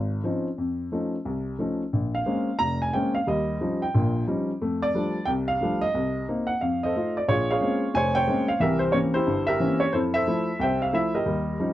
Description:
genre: jazz.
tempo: 179 BPM.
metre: 4/4.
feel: swing 63% on 8ths.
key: unclear.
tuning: A4 = 440 Hz.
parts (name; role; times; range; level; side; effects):
warm baby grand piano; solo; 0.0-11.7 s; F1 to Bb5; -23 LUFS; equal; none.
room: light reverb.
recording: dry, close 1970s-style studio recording.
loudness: -23 LUFS.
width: side -14 dB against mid.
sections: 0.0-7.3 A section; 7.3-11.7 B section.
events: none.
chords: 0.0 Dbmaj9; 0.6 F7b13; 1.9 Bbm9; 3.3 Eb9; 4.6 F69; 5.9 Cm7b5; 6.6 F7; 7.3 Bbm9; 8.6 C7b9; 9.9 Fmaj7.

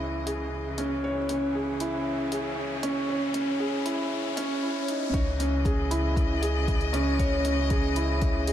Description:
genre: piano and strings electronica.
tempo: 117 BPM.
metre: 4/4.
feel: straight.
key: C# minor.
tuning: A4 = 440 Hz.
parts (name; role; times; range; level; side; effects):
warm string quartet; sustained chords; 0.0-8.5 s; C#3 to D#5; -34 LUFS; left 2 dB; sidechain pumping.
felt-muted upright piano; riff; 0.0-8.5 s; C#4 to C#5; -28 LUFS; right 1 dB; tape echo.
warm sub bass; bass; 0.0-8.5 s; C#2; -31 LUFS; equal; sidechain pumping.
riser and swell; sound effects; 0.0-5.1 s; none; -38 LUFS; left 3 dB; none.
electronic hi-hat; drums; 0.3-8.5 s; none; -38 LUFS; left 2 dB; none.
electronic kick drum; drums; 5.1-8.3 s; none; -27 LUFS; equal; none.
room: moderate echo chamber reverb, RT60 2.7 s.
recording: high-pass filter.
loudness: -25 LUFS.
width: side -10 dB against mid.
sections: 0.0-5.1 A section; 5.1-8.5 B section.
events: build-up 0.0-5.1; riser 0.0-5.1; filter sweep 0.0-5.1; swell 4.1-5.1; drop 5.1-8.5.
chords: 0.0 C#madd9.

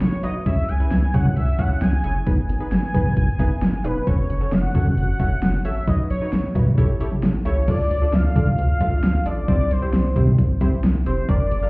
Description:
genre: synth-pop.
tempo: 133 BPM.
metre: 4/4.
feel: straight.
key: C# minor, D minor from 7.7 s.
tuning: A4 = 439 Hz.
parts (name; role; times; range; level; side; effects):
octave-doubled lead; melody; 0.0-11.7 s; B4 to G#5; -28 LUFS; equal; chorus, digital delay.
wide unison pluck; accompaniment; 0.0-11.7 s; B3 to F5; -30 LUFS; equal; none.
rubbery square bass; bass; 0.0-11.7 s; E1 to D3; -22 LUFS; equal; none.
pop drum kit; drums; 0.0-11.6 s; cowbell, crash cymbal, hi-hat, kick drum, snare drum, toms; -20 LUFS; equal; overdrive.
room: moderate echo chamber reverb, RT60 1.3 s.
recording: heard muffled through a wall, club reverb, EQ.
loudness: -17 LUFS.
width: side -25 dB against mid.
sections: 0.0-7.7 A section; 7.7-11.7 A section.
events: none.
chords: 0.5 C#m; 2.3 G#m; 4.1 F#m; 5.9 Badd9; 6.8 A7; 7.7 Dm; 9.5 C.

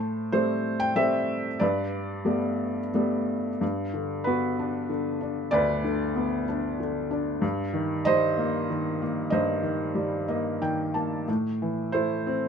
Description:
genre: classical, lyrical solo piano.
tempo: 86-97 BPM.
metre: 3/4.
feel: rubato.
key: G major.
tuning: A4 = 441 Hz.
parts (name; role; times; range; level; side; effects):
felt-muted upright piano; solo; 0.0-12.5 s; D2 to A5; -24 LUFS; equal; none.
room: moderate studio reverb, RT60 0.9 s.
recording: dark, warm production.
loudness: -24 LUFS.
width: side -6 dB against mid.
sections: 0.0-3.6 A section; 3.6-12.5 B section.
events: felt piano fill 10.0-11.3.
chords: 0.0 Am7; 1.6 Gadd9; 3.6 Gmaj7; 7.4 Eb6/G; 11.3 Am.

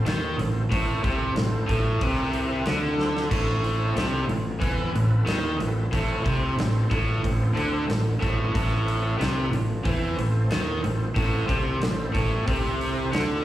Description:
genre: blues rock power trio and southern rock.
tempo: 92 BPM.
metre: 4/4.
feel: straight.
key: A minor.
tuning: A4 = 443 Hz.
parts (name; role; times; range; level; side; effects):
overdriven tonewheel organ; sustained chords; 0.0-13.3 s; C4 to A5; -35 LUFS; right 2 dB; slow rotary speaker, chorus vibrato.
fuzz fingered electric bass; bass; 0.0-13.4 s; A1 to E2; -27 LUFS; equal; overdrive.
cranked stack guitar; riff; 0.1-13.4 s; A2 to E3; -26 LUFS; equal; overdrive, slapback echo.
huge arena drum kit; drums; 0.1-13.3 s; crash cymbal, hi-hat, kick drum, snare drum; -29 LUFS; equal; none.
room: small room reverb.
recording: live gig heard through the venue's PA, recital hall reverb, small room ambience.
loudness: -22 LUFS.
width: side -13 dB against mid.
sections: 0.0-13.4 A section.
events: tonewheel organ fill 2.3-3.3; drum fill 3.0-3.3.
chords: 0.0 Am.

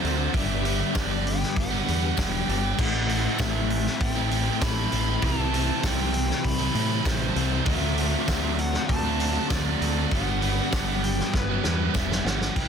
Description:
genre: rock, shoegaze and dream pop.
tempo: 98 BPM.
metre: 4/4.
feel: straight.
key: unclear.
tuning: A4 = 441 Hz.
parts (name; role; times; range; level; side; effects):
fuzz lead guitar; melody; 0.0-12.7 s; B4 to B5; -33 LUFS; right 1 dB; distortion, tape echo.
analog string pad; sustained chords; 0.0-12.6 s; F#4 to B5; -38 LUFS; right 1 dB; ensemble chorus.
twangy electric guitar; arpeggios; 0.0-12.7 s; E3 to D4; -38 LUFS; right 10 dB; analog chorus, tape echo.
biting overdriven guitar; riff; 0.0-12.7 s; G2 to G4; -30 LUFS; right 14 dB; reverse reverb.
crunchy overdriven guitar; riff; 0.0-12.6 s; G2 to F#4; -31 LUFS; left 1 dB; none.
overdriven semi-hollow guitar; riff; 0.0-12.7 s; G2 to G4; -32 LUFS; left 13 dB; ensemble chorus.
growling picked electric bass; bass; 0.0-12.7 s; E1 to A2; -28 LUFS; equal; overdrive.
loose indie drum kit; drums; 0.0-12.7 s; crash cymbal, hi-hat, kick drum, snare drum; -29 LUFS; equal; none.
tambourine; percussion; 0.9-12.1 s; none; -41 LUFS; left 18 dB; none.
room: small room ambience.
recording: dense, heavily limited modern master.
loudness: -22 LUFS.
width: side -7 dB against mid.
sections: 0.0-12.6 A section.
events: drum fill 11.3-12.6.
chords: 0.3 Gmaj7; 2.8 Am7; 7.7 D7; 10.1 Gmaj7.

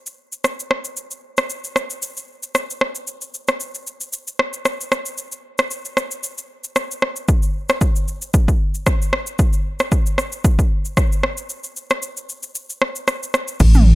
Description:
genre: afrobeats.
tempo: 114 BPM.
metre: 4/4.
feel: swing 55% on 16ths.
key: unclear.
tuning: A4 = 440 Hz.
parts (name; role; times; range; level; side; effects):
deep house drum kit; drums; 0.1-13.9 s; crash cymbal, kick drum, rim click, shaker, toms; -18 LUFS; equal; overdrive.
warm sub bass; bass; 13.6-13.9 s; A1; -9 LUFS; equal; none.
room: digital ambience.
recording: none.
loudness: -18 LUFS.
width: side -19 dB against mid.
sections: 0.0-13.6 A section.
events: break 0.0-5.2, 11.5-13.6.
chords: none.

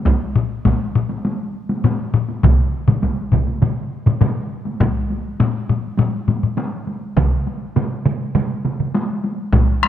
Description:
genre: japanese traditional, taiko drum ensemble.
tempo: 101 BPM.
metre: 4/4.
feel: straight.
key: none.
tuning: none.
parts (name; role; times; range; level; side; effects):
taiko ensemble; percussion; 0.1-9.9 s; none; -24 LUFS; equal; none.
taiko ensemble; percussion; 0.1-9.7 s; none; -18 LUFS; right 1 dB; none.
solo taiko drums; percussion; 0.4-9.9 s; none; -19 LUFS; left 5 dB; none.
taiko ensemble; percussion; 2.4-8.9 s; none; -20 LUFS; right 3 dB; none.
room: light reverb.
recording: close, detailed microphones.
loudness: -17 LUFS.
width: side -11 dB against mid.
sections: 0.0-4.8 A section; 4.8-9.9 B section.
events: none.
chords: none.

